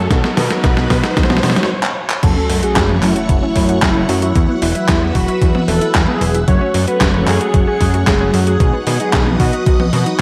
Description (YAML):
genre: italo disco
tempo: 113 BPM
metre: 4/4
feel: straight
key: F# dorian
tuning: A4 = 440 Hz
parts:
  - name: phased string machine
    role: sustained chords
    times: 0.0-10.2 s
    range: A3 to E6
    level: -28 LUFS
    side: equal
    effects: ensemble chorus, phaser
  - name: analog pluck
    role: arpeggios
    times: 0.0-10.1 s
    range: D#3 to F#4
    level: -27 LUFS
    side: equal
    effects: none
  - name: mellow synth brass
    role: stabs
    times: 0.0-10.2 s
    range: F#3 to F#4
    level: -25 LUFS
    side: equal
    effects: chorus
  - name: fat analog bass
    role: bass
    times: 0.0-10.0 s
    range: E1 to B2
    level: -20 LUFS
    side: equal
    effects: tube saturation
  - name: riser and sub drop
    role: sound effects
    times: 0.0-4.4 s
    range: none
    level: -26 LUFS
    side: equal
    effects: none
  - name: clean 12-bit digital drum machine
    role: drums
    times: 0.1-10.2 s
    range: crash cymbal, handclaps, hi-hat, snare drum, toms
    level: -20 LUFS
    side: equal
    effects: overdrive, gated reverb
  - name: electronic kick drum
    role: drums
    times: 0.1-9.8 s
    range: none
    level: -18 LUFS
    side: equal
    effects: overdrive
  - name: unison lead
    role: melody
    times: 2.2-10.2 s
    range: E4 to C#5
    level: -22 LUFS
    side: equal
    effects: digital delay
room: light reverb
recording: vinyl crackle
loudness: -14 LUFS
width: mono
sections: 0.0-2.2 A section; 2.2-10.2 B section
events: drum fill 0.0-1.7, 1.8-2.2; riser 0.0-1.7; stop 1.7-2.2; impact 2.2-4.4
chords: 0.1 B; 2.2 F#m; 4.4 Esus2; 6.5 F#m; 8.6 B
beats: | 0.11 0.64 1.17 1.70 | 2.23 2.76 3.29 3.82 | 4.35 4.88 5.42 5.95 | 6.48 7.01 7.54 8.07 | 8.60 9.13 9.66 10.20